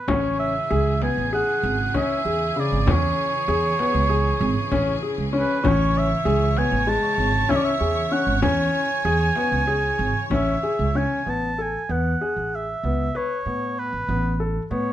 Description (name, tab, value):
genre	contemporary instrumental, chamber music in an uneven meter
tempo	193 BPM (eighths)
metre	9/8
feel	straight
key	A major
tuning	A4 = 440 Hz
part	warm oboe	melody	0.0-14.9 s	B4 to A5	-25 LUFS	right 2 dB	none
part	clear symphonic string section	sustained chords	0.1-11.2 s	C#3 to C#5	-31 LUFS	left 2 dB	none
part	warm grand piano	arpeggios	0.1-14.9 s	C#3 to B4	-25 LUFS	left 3 dB	none
part	upright bass	bass	0.1-14.9 s	G#1 to A2	-24 LUFS	right 2 dB	none
part	frame drum	percussion	0.1-11.1 s	none	-28 LUFS	left 3 dB	none
room	light reverb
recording	close, detailed microphones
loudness	-20 LUFS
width	side -12 dB against mid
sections	0.1-11.3 A section; 11.3-14.9 B section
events	none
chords	0.1 Amaj7; 11.3 Aadd9